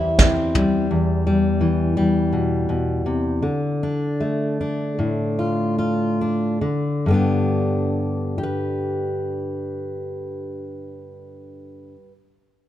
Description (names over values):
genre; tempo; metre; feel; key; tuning
indie folk with a building arrangement; 68-85 BPM; 4/4; straight; G mixolydian; A4 = 437 Hz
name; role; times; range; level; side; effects
fingerpicked steel-string acoustic guitar; accompaniment; 0.0-12.1 s; E2 to B4; -20 LUFS; left 1 dB; none
soft brush drum kit; drums; 0.2-0.7 s; kick drum, snare drum, toms; -18 LUFS; right 1 dB; none
room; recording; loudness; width
light reverb; dark, warm production; -19 LUFS; side -12 dB against mid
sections
0.0-7.1 A section; 7.1-10.6 B section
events
slowing down 0.9-7.1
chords
0.0 Am7 (rootless); 0.9 Em; 3.4 Dm; 7.1 G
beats
0.19 | 0.90 1.60 2.32 3.05 | 3.80 4.57 5.37 6.19 | 7.06 7.94 8.83 9.71